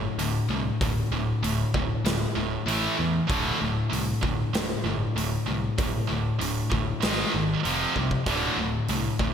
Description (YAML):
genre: hard rock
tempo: 97 BPM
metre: 4/4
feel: straight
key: D minor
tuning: A4 = 439 Hz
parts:
  - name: scooped high-gain guitar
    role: riff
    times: 0.0-9.3 s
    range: D2 to A3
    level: -28 LUFS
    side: left 6 dB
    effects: distortion
  - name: scooped high-gain guitar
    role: riff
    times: 0.0-9.3 s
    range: D2 to A3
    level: -29 LUFS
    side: right 7 dB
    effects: distortion
  - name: picked electric bass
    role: bass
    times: 0.0-9.3 s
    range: D1 to E2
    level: -32 LUFS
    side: equal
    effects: none
  - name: big rock drum kit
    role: drums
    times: 0.2-9.3 s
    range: hi-hat, kick drum, snare drum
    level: -31 LUFS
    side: equal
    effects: gated reverb
room: moderate lush hall reverb, RT60 1.9 s, small room ambience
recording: bright 1980s-style digital production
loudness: -24 LUFS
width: side -8 dB against mid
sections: 0.0-9.3 A section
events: drum fill 8.0-8.3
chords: 0.0 D5; 2.7 A5; 3.3 D5; 7.0 G#5; 7.6 F5; 8.3 D5